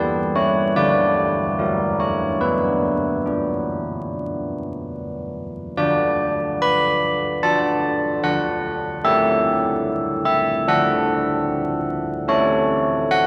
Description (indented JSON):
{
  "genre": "classical, tune for church bells",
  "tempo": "74 BPM",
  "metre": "4/4",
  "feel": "straight",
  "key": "B minor, D major from 5.8 s",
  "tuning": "A4 = 440 Hz",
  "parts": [
    { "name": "carillon bells", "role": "solo", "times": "0.0-13.3 s", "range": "D3 to B5", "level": "-21 LUFS", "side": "equal", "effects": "none" }
  ],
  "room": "wet church reverb, RT60 3.2 s",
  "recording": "vinyl crackle",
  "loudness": "-20 LUFS",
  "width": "mono",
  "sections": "0.0-5.8 A section; 5.8-13.3 B section",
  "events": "none",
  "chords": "0.0 Em; 0.8 Bm/D; 1.6 F#7; 2.4 Bm; 5.8 D; 9.1 A7; 10.7 D; 12.3 A"
}